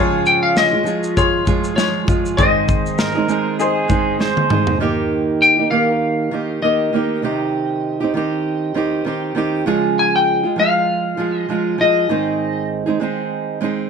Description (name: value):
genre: acoustic pop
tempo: 99 BPM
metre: 4/4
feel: swing 55% on 16ths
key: Eb mixolydian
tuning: A4 = 440 Hz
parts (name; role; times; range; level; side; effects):
- clear upright piano; accompaniment; 0.0-4.8 s; Eb4 to C6; -23 LUFS; left 4 dB; none
- fingerpicked old ladder-braced acoustic guitar; accompaniment; 0.0-13.9 s; Ab2 to Ab4; -19 LUFS; right 4 dB; none
- clean lap steel guitar; melody; 0.3-12.7 s; Db5 to Ab5; -17 LUFS; left 4 dB; none
- modern studio drum kit; drums; 0.3-4.8 s; kick drum, shaker, snare drum, toms; -20 LUFS; left 1 dB; none
- pedal steel guitar; second line; 3.0-4.8 s; Ab4 to C5; -22 LUFS; right 4 dB; none
room: light reverb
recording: none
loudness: -15 LUFS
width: side -6 dB against mid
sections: 0.0-4.8 A section; 4.8-13.9 A section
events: drum fill 4.2-4.8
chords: 0.0 Db; 2.4 Ab; 4.8 Eb; 7.2 Cm; 9.7 Db; 12.1 Ab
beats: 0.56 1.17 1.78 | 2.38 2.99 3.60 4.20 | 4.81 5.42 6.02 6.63 | 7.24 7.84 8.45 9.06 | 9.66 10.27 10.88 11.48 | 12.09 12.70 13.30